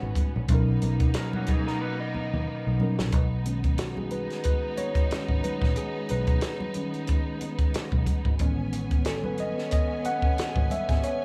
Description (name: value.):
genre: R&B, neo-soul.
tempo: 91 BPM.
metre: 4/4.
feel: swing 55% on 16ths.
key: B major.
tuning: A4 = 440 Hz.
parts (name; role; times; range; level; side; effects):
electric guitar through a small old amp; second line; 0.0-2.9 s; A#3 to D#5; -38 LUFS; equal; subtle chorus.
mellow tine electric piano; accompaniment; 0.0-11.2 s; A2 to F#5; -32 LUFS; equal; none.
rich studio string section; sustained chords; 0.0-11.2 s; G#3 to G#5; -39 LUFS; equal; none.
fingered electric bass; bass; 0.0-11.0 s; G#1 to D#2; -31 LUFS; equal; none.
compact cocktail drum kit; drums; 0.2-11.2 s; hi-hat, kick drum, snare drum; -29 LUFS; equal; none.
congas; percussion; 0.2-11.2 s; none; -41 LUFS; equal; none.
room: light reverb.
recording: small room ambience.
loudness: -27 LUFS.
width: mono.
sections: 0.0-3.1 A section; 3.1-11.2 B section.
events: drum fill 1.8-3.1; tine electric piano solo 3.1-11.2.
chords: 0.5 Bmaj7; 3.1 B6; 8.4 Amaj9#11.